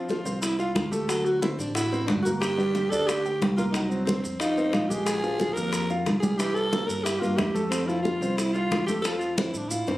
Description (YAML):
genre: Afro-Cuban jazz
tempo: 181 BPM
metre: 4/4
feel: straight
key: F major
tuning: A4 = 440 Hz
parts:
  - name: growling alto saxophone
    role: melody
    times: 0.0-10.0 s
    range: C4 to Bb4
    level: -28 LUFS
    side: right 1 dB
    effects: plate reverb
  - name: warm baby grand piano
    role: accompaniment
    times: 0.0-10.0 s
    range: E3 to G5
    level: -30 LUFS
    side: equal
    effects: none
  - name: bongos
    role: percussion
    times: 0.1-10.0 s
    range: none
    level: -32 LUFS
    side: left 3 dB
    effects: none
  - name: congas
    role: percussion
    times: 0.1-10.0 s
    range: none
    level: -30 LUFS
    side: equal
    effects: none
  - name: maracas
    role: percussion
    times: 0.1-10.0 s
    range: none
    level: -38 LUFS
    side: right 1 dB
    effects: none
  - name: upright bass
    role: bass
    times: 0.3-10.0 s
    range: G1 to A2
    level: -31 LUFS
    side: equal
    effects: none
room: light reverb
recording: recorded on a phone in the room, studio reverb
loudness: -23 LUFS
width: side -16 dB against mid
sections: 0.0-10.0 A section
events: drum fill 9.4-10.0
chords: 0.0 F; 1.1 D7; 2.4 Gm; 3.7 Cdim; 4.4 F5; 5.1 Bbsus2; 6.4 C7; 7.7 Fmaj7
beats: 0.10 0.43 0.76 | 1.09 1.42 1.75 2.09 | 2.42 2.75 3.08 3.41 | 3.74 4.08 4.41 4.74 | 5.07 5.40 5.73 6.07 | 6.40 6.73 7.06 7.39 | 7.72 8.05 8.38 8.72 | 9.05 9.38 9.71